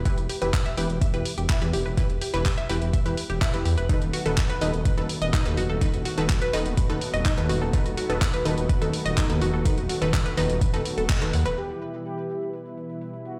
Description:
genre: progressive house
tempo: 125 BPM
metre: 4/4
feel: straight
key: E harmonic minor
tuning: A4 = 442 Hz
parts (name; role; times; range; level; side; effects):
- dark detuned saw bass; bass; 0.0-11.6 s; D#1 to E2; -29 LUFS; equal; sidechain pumping
- analog pluck; arpeggios; 0.1-11.5 s; D#4 to G5; -33 LUFS; equal; chorus, phaser, sidechain pumping, tape echo
- unison pluck; stabs; 0.1-11.3 s; D#3 to B4; -33 LUFS; equal; sidechain pumping, tape echo
- deep house drum kit; drums; 0.1-13.4 s; handclaps, hi-hat; -35 LUFS; equal; overdrive, low-pass filter on hats, low-pass filter on cymbals, low-pass filter on snare, low-pass filter on room
- electronic kick drum; drums; 0.1-11.2 s; none; -26 LUFS; equal; overdrive
- lush unison pad; sustained chords; 3.9-13.4 s; B2 to B4; -36 LUFS; equal; chorus, sidechain pumping
- expressive synth lead; melody; 11.6-13.4 s; F#4 to G4; -36 LUFS; equal; analog chorus, sidechain pumping, digital delay
room: light reverb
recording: played on a big sound system in a bare room, stone room reverb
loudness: -25 LUFS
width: mono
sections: 0.0-11.6 A section; 11.6-13.4 B section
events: band accent 11.1; filter sweep on analog synth pad 11.6-13.4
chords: 0.0 Em; 3.9 B7/D#; 11.6 Em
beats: | 0.06 0.54 1.01 1.50 | 1.98 2.46 2.94 3.42 | 3.90 4.38 4.86 5.33 | 5.82 6.29 6.78 7.25 | 7.74 8.21 8.70 9.18 | 9.65 10.13 10.62 11.10 | 11.57 12.05 12.54 13.02

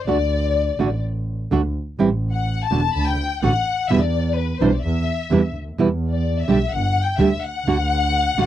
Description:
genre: tango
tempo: 127 BPM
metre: 4/4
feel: rubato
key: unclear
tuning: A4 = 440 Hz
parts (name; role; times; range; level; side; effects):
- warm studio violin section; second line; 0.0-8.5 s; B4 to B5; -23 LUFS; left 6 dB; none
- nylon-string guitar; accompaniment; 0.1-8.5 s; B2 to G4; -18 LUFS; right 4 dB; none
- dark double bass; bass; 0.1-8.5 s; E1 to E2; -22 LUFS; equal; none
room: little or no reverb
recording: dry, close 1970s-style studio recording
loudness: -18 LUFS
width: side -12 dB against mid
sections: 0.0-8.5 A section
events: violin section solo 0.0-8.5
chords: 0.1 D; 2.0 A5; 2.9 D; 3.9 Em7; 4.8 Cadd9/E (rootless); 5.8 Em; 6.7 G5; 7.7 D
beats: | 0.07 0.55 1.02 1.51 | 1.99 2.47 2.94 3.42 | 3.89 4.36 4.84 5.31 | 5.78 6.25 6.72 7.20 | 7.67 8.14

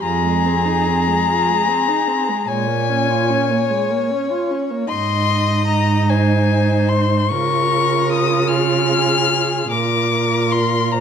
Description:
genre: classical, slow romantic movement for string quartet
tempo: 50 BPM (dotted quarters)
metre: 12/8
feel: rubato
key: unclear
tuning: A4 = 440 Hz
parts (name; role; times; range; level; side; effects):
- warm violin; melody; 0.0-11.0 s; Ab5 to F6; -20 LUFS; left 8 dB; none
- warm violin; second line; 0.0-11.0 s; Ab4 to Eb5; -23 LUFS; left 3 dB; none
- warm viola; accompaniment; 0.0-11.0 s; F3 to F4; -22 LUFS; right 4 dB; none
- warm cello; bass; 0.0-11.0 s; F2 to Db3; -20 LUFS; right 4 dB; none
room: moderate recital hall reverb, RT60 1.4 s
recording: dark, warm production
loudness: -15 LUFS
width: side -7 dB against mid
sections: 0.0-11.0 A section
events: none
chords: 0.1 Fm7; 2.5 Bbm7; 4.9 Ab; 7.3 Db; 9.7 Bb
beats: | 0.05 1.28 2.49 3.70 | 4.90 6.10 7.30 8.48 | 9.71 10.92

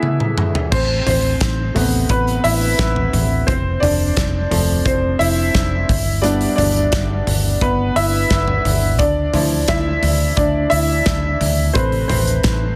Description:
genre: piano-driven pop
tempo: 87 BPM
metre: 4/4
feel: straight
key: A minor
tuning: A4 = 440 Hz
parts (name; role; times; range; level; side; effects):
- clear upright piano; accompaniment; 0.0-12.8 s; C3 to E5; -21 LUFS; equal; none
- modern studio drum kit; drums; 0.0-12.6 s; crash cymbal, hi-hat, kick drum, snare drum, toms; -22 LUFS; equal; none
- vintage muted fingered electric bass; bass; 0.7-12.7 s; F1 to D2; -22 LUFS; equal; none
room: light reverb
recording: dense, heavily limited modern master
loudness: -17 LUFS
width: mono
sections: 0.7-12.8 A section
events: break 0.0-0.7; drum fill 0.0-0.7; upright piano solo 0.7-12.8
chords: 0.0 E; 0.7 Amadd9; 3.5 F; 5.9 G; 9.0 Dmadd9; 11.8 Amadd9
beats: 0.03 | 0.72 1.41 2.10 2.79 | 3.48 4.17 4.86 5.55 | 6.24 6.93 7.62 8.31 | 9.00 9.69 10.38 11.06 | 11.76 12.44

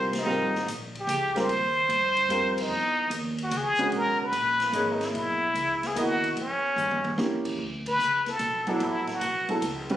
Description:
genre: modal jazz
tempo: 148 BPM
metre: 3/4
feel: swing 67% on 8ths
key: unclear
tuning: A4 = 440 Hz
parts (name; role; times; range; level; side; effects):
- trumpet with plunger mute; melody; 0.0-9.5 s; C#4 to C5; -25 LUFS; equal; none
- warm upright piano; accompaniment; 0.0-10.0 s; F#3 to D#5; -29 LUFS; right 1 dB; none
- upright bass; bass; 0.0-10.0 s; Ab1 to G2; -36 LUFS; equal; none
- swinging big-band drum kit; drums; 0.1-10.0 s; crash cymbal, hi-hat, kick drum, ride cymbal, snare drum, toms; -37 LUFS; left 2 dB; none
room: light reverb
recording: recorded on a phone in the room, studio reverb, compression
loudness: -24 LUFS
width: side -12 dB against mid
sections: 0.0-7.6 A section; 7.6-10.0 B section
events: band accent 0.1, 2.5, 7.8; drum fill 6.8-7.2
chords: 0.0 Abmaj9; 2.7 Emaj9; 6.4 Edim7; 7.6 Dmaj9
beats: | 0.27 0.68 1.08 | 1.49 1.90 2.30 | 2.71 3.12 3.52 | 3.93 4.33 4.74 | 5.15 5.55 5.96 | 6.37 6.78 7.18 | 7.59 8.00 8.40 | 8.81 9.22 9.63

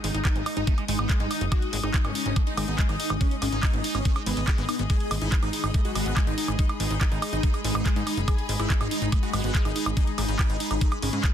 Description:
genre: psychedelic trance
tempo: 142 BPM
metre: 4/4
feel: straight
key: G# minor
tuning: A4 = 440 Hz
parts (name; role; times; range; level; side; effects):
- dense compressed supersaw; melody; 0.0-11.2 s; B3 to G#4; -33 LUFS; equal; phaser, sidechain pumping, ping-pong delay
- evolving wavetable pad; sustained chords; 0.0-11.3 s; G#3 to G#4; -35 LUFS; left 1 dB; ensemble chorus, built-in reverb, phaser, sidechain pumping
- liquid acid bass; riff; 0.0-11.3 s; G#3 to D#4; -35 LUFS; moving between left 7 dB and right 8 dB; phaser, auto-pan, sidechain pumping, ping-pong delay
- plucky analog bass; bass; 0.0-11.2 s; F#1 to G#2; -29 LUFS; equal; none
- drum and bass drum kit; drums; 0.0-11.3 s; handclaps, hi-hat, woodblock; -31 LUFS; right 1 dB; none
- downlifter; sound effects; 0.0-1.5 s; none; -51 LUFS; equal; none
- rich studio string section; texture; 0.0-11.3 s; G#3 to D#6; -37 LUFS; left 3 dB; sidechain pumping
- electronic kick drum; drums; 0.2-11.3 s; none; -24 LUFS; equal; none
room: little or no reverb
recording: dense, heavily limited modern master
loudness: -23 LUFS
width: side -10 dB against mid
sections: 0.0-11.3 A section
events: none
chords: 0.0 G#5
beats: 0.25 0.67 1.09 | 1.52 1.94 2.36 2.79 | 3.21 3.63 4.05 4.48 | 4.90 5.32 5.74 6.17 | 6.59 7.01 7.43 7.86 | 8.28 8.70 9.12 9.55 | 9.97 10.39 10.81 11.24

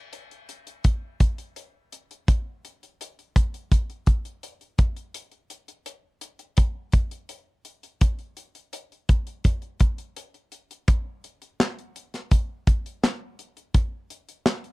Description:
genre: pop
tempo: 84 BPM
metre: 4/4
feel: straight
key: none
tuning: none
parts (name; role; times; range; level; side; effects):
- modern studio drum kit; drums; 0.1-14.7 s; handclaps, hi-hat, kick drum, snare drum; -20 LUFS; equal; none
room: little or no reverb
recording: dry, close 1970s-style studio recording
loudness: -22 LUFS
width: side -24 dB against mid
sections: 0.0-14.7 A section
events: none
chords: none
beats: 0.13 0.85 1.56 | 2.28 3.00 3.71 4.43 | 5.15 5.87 6.58 7.30 | 8.02 8.73 9.45 10.16 | 10.88 11.60 12.31 13.03 | 13.74 14.46

